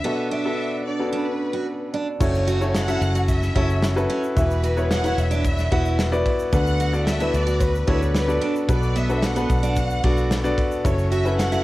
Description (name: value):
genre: piano-driven pop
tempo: 111 BPM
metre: 4/4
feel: straight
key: B minor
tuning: A4 = 438 Hz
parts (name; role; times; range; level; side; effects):
- rich studio violin section; melody; 0.0-11.6 s; B4 to F#5; -29 LUFS; left 1 dB; cassette tape, plate reverb
- clear concert grand piano; accompaniment; 0.0-11.6 s; B2 to F#5; -24 LUFS; left 1 dB; cassette tape, plate reverb
- picked steel-string acoustic guitar; riff; 0.0-11.6 s; B3 to F#4; -29 LUFS; right 4 dB; cassette tape
- vintage muted fingered electric bass; bass; 2.2-11.6 s; E1 to D2; -23 LUFS; equal; none
- modern studio drum kit; drums; 2.2-11.5 s; crash cymbal, kick drum, ride cymbal, snare drum; -25 LUFS; equal; cassette tape
- tube shaker; percussion; 2.2-11.6 s; none; -46 LUFS; left 4 dB; none
room: moderate studio reverb, RT60 0.6 s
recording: home recording on cassette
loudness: -19 LUFS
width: side -17 dB against mid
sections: 0.0-2.2 A section; 2.2-11.6 B section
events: break 0.0-2.2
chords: 0.0 Bm7; 2.2 F#m7; 4.4 Esus2; 6.5 D6; 8.7 Bm7; 10.8 F#m7